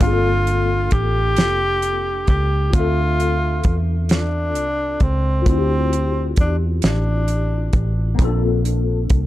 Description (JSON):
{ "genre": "slow six-eight R&B", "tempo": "44 BPM (dotted quarters)", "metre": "6/8", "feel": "straight", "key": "D minor", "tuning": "A4 = 443 Hz", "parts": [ { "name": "breathy tenor saxophone", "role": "melody", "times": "0.0-7.8 s", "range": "C4 to G4", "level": "-22 LUFS", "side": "equal", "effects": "none" }, { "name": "tine electric piano", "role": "accompaniment", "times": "0.0-9.3 s", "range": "Bb3 to E5", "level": "-26 LUFS", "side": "left 5 dB", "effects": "ensemble chorus" }, { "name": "vintage muted fingered electric bass", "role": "bass", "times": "0.0-9.3 s", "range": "F1 to E2", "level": "-20 LUFS", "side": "equal", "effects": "none" }, { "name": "damped 70s drum kit", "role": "drums", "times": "0.0-9.3 s", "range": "hi-hat, kick drum, snare drum", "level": "-17 LUFS", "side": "equal", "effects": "none" } ], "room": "little or no reverb", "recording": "dark, warm production", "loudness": "-16 LUFS", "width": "side -15 dB against mid", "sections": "0.0-9.3 A section", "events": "none", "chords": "0.0 Gm11; 2.7 Dm9; 8.2 Bbmaj9" }